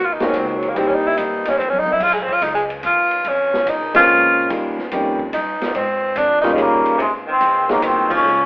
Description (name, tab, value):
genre	jazz, small-group swing and bop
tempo	144 BPM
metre	3/4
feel	swing 67% on 8ths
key	Ab major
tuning	A4 = 440 Hz
part	bright tenor saxophone	second line	0.0-8.5 s	C3 to F4	-17 LUFS	equal	none
part	upright bass	bass	0.0-8.5 s	Ab1 to Ab2	-34 LUFS	equal	none
part	dark grand piano	accompaniment	0.2-1.6, 3.9-8.2 s	G3 to G4	-20 LUFS	equal	none
part	open jazz drum kit	drums	0.2-8.2 s	crash cymbal, hi-hat, kick drum, ride cymbal, snare drum, toms	-27 LUFS	equal	none
part	trombone with metal mute	melody	6.6-8.5 s	Ab3 to Db4	-15 LUFS	equal	none
room	wet studio reverb, RT60 0.7 s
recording	band playing live in one room, telephone sound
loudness	-15 LUFS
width	side -26 dB against mid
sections	0.0-7.0 A section; 7.0-8.5 B section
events	tenor saxophone solo 0.0-7.0; drum fill 1.6-2.0; band accent 8.0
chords	0.0 Ab9; 0.8 Cm7; 1.6 Dbmaj9/F; 2.0 Bbm7; 4.5 Eb9; 5.8 Abadd9; 6.6 Eb9; 7.0 Ab9